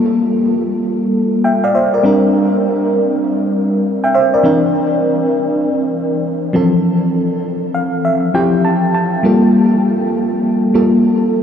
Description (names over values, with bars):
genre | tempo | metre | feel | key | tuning
R&B | 100 BPM | 4/4 | swing 65% on 16ths | G dorian | A4 = 445 Hz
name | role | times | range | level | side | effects
FM electric piano with auto-pan | solo | 0.0-11.4 s | E3 to A5 | -12 LUFS | equal | diffuse ambient delay
room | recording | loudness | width
wet huge ambient reverb, RT60 7.4 s | dreamy mix soaked in reverb, small room ambience | -12 LUFS | side -8 dB against mid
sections
0.0-11.4 A section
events
FM electric piano fill 7.4-9.2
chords
0.0 Gm9; 2.0 Bb69; 4.4 C9; 6.5 Fmaj7; 9.2 Gm9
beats
0.24 0.84 1.44 | 2.04 2.64 3.24 3.84 | 4.44 5.04 5.64 6.24 | 6.84 7.44 8.04 8.64 | 9.24 9.84 10.44 11.04